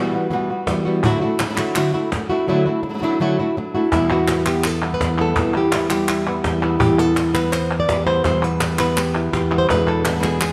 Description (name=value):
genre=flamenco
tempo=166 BPM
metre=4/4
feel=straight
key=E minor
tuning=A4 = 439 Hz
part: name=flamenco guitar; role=melody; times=0.0-10.5 s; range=E2 to D5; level=-21 LUFS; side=equal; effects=none
part: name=flamenco guitar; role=stabs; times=0.0-10.5 s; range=E2 to F#4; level=-28 LUFS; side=equal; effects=none
part: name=cajon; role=percussion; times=0.7-10.2 s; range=none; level=-27 LUFS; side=equal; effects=none
part: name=palmas hand claps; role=percussion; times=1.0-10.5 s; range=none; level=-28 LUFS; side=equal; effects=none
room=wet stone room reverb, RT60 1.2 s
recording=none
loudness=-19 LUFS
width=mono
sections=0.0-3.9 A section; 3.9-10.5 B section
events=none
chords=0.0 Emadd9; 1.0 Dadd9; 3.9 Em; 9.7 E7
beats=0.32 0.68 | 1.04 1.40 1.76 2.12 | 2.48 2.84 3.20 3.56 | 3.93 4.29 4.65 5.01 | 5.37 5.73 6.09 6.45 | 6.81 7.17 7.53 7.89 | 8.26 8.62 8.98 9.34 | 9.70 10.06 10.42